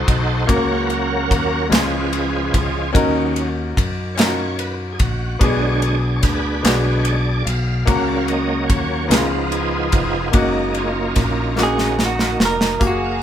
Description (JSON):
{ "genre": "slow gospel", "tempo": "49 BPM (dotted quarters)", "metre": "6/8", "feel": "straight", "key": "F# major", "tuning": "A4 = 439 Hz", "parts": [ { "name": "clear baby grand piano", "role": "accompaniment", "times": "0.0-13.2 s", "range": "B2 to E#5", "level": "-23 LUFS", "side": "left 2 dB", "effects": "none" }, { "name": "bright tonewheel organ", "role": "sustained chords", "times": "0.0-13.2 s", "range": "D3 to F#5", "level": "-22 LUFS", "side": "right 2 dB", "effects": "slow rotary speaker, overdrive, chorus vibrato" }, { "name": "fingered electric bass", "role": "bass", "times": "0.0-13.2 s", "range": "E#1 to F#2", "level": "-23 LUFS", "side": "equal", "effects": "none" }, { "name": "modern studio drum kit", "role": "drums", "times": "0.1-13.0 s", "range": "hi-hat, kick drum, ride cymbal, snare drum", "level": "-20 LUFS", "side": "equal", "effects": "none" }, { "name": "group handclap", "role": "percussion", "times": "1.7-12.0 s", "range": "none", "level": "-27 LUFS", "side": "left 3 dB", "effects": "none" }, { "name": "direct-recorded clean electric guitar", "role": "melody", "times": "11.6-13.2 s", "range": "F#4 to A#4", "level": "-21 LUFS", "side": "right 3 dB", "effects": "none" }, { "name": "warm studio string section", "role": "sustained chords", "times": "12.8-13.2 s", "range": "F#4 to A#5", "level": "-29 LUFS", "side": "right 2 dB", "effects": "none" } ], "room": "moderate small room reverb, RT60 0.6 s", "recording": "band playing live in one room", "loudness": "-16 LUFS", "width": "side -10 dB against mid", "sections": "0.0-12.8 A section", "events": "tonewheel organ solo 0.0-12.8; drum fill 11.6-12.8", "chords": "0.5 F#/C#; 1.7 C#; 3.0 D#m7; 5.4 Bm6; 7.9 F#/C#; 9.1 C#7; 10.3 F#6", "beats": "| 0.49 1.72 | 2.95 4.18 | 5.41 6.65 | 7.88 9.11 | 10.34 11.58 | 12.81" }